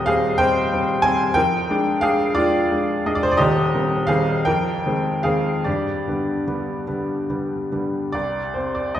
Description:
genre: classical, romantic nocturne for solo piano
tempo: 46-63 BPM (dotted quarters)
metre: 12/8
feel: rubato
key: unclear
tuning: A4 = 440 Hz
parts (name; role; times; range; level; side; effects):
- clear upright piano; solo; 0.0-9.0 s; Eb1 to Ab5; -18 LUFS; equal; none
room: wet scoring stage reverb, RT60 1.7 s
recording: heard from further back in the room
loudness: -18 LUFS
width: side -11 dB against mid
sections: 0.0-8.1 A section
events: none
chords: 0.0 Cm/Eb; 1.4 Ddim/F; 3.4 Cm/Eb; 4.5 Fm7; 5.7 G; 8.1 N.C.

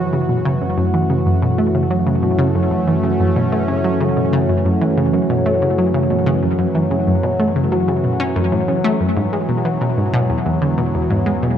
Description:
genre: ambient, sequencer-driven space music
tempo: 93 BPM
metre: 4/4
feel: straight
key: F# minor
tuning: A4 = 436 Hz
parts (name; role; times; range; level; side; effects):
- sweeping resonant pad; sustained chords; 0.0-11.6 s; E3 to F#4; -18 LUFS; equal; chorus
- analog pluck; riff; 0.0-11.5 s; E2 to C#4; -18 LUFS; equal; chorus, analog delay
- analog drone; bass; 0.0-11.6 s; E2 to F#2; -25 LUFS; equal; chorus
room: wet plate reverb, RT60 3.4 s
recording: dark, warm production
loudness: -15 LUFS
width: side -9 dB against mid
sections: 0.0-11.6 A section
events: none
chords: 0.0 F#m7; 9.2 Eadd9

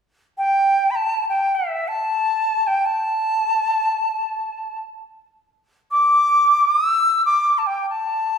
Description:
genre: andean folk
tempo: free time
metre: none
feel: none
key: unclear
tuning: A4 = 440 Hz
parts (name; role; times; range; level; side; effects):
- bright reedy quena; melody; 0.4-8.4 s; E5 to E6; -17 LUFS; equal; none
room: wet recital hall reverb, RT60 1.4 s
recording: recorded in a church or concert hall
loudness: -17 LUFS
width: side -7 dB against mid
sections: 0.0-8.4 A section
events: none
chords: none

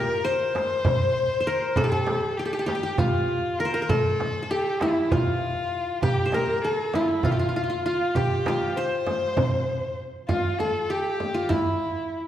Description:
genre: Turkish makam ensemble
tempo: 197 BPM (eighths)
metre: 7/8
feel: straight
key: C makam hicaz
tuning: A4 = 442 Hz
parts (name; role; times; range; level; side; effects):
- qanun; melody; 0.0-12.3 s; E4 to C5; -26 LUFS; equal; none
- rich violin; second line; 0.0-12.2 s; E4-20c to C5; -28 LUFS; left 3 dB; none
- darbuka; percussion; 0.3-9.8 s; none; -30 LUFS; right 1 dB; none
- frame drum; percussion; 0.5-11.6 s; none; -29 LUFS; right 2 dB; none
room: wet recital hall reverb, RT60 1.7 s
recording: heard from further back in the room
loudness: -22 LUFS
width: side -11 dB against mid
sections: 0.0-10.3 A section; 10.3-12.3 B section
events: none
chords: none

